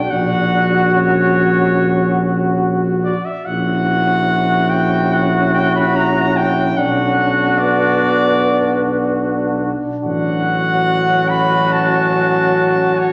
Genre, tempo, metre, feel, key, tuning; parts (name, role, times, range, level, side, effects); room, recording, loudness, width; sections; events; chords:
classical, hymn-like piece for brass band; 72 BPM; 4/4; rubato; A4 = 438 Hz
clear cornet; melody; 0.0-13.1 s; C#5 to B5; -22 LUFS; equal
warm flugelhorn; second line; 0.0-13.1 s; F#4; -21 LUFS; equal
mellow euphonium; accompaniment; 0.0-13.1 s; F#3 to D4; -24 LUFS; equal
warm euphonium; accompaniment; 0.0-13.1 s; C#4 to F#4; -24 LUFS; equal
mellow tuba; bass; 0.0-13.1 s; A1 to B1; -22 LUFS; equal
wet recital hall reverb, RT60 1.4 s; -16 LUFS; mono
0.0-13.1 A section
0.1 F#/A#; 3.5 F#7/A#; 6.8 Bm; 10.0 F#m/A